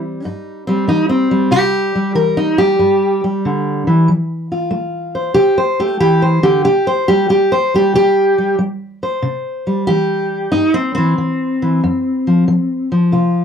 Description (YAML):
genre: acoustic country blues, solo or duo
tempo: 93 BPM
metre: 4/4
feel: swing 67% on 8ths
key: C major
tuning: A4 = 439 Hz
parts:
  - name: fingerpicked steel-string acoustic guitar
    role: solo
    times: 0.0-13.4 s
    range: F2 to C5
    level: -13 LUFS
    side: equal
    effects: none
room: moderate studio reverb, RT60 0.5 s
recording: dark, warm production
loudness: -13 LUFS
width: side -7 dB against mid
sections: 0.0-1.5 A section; 1.5-13.4 B section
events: steel-string acoustic guitar solo 1.5-13.4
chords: 0.0 C; 4.1 F; 6.7 C; 11.8 F5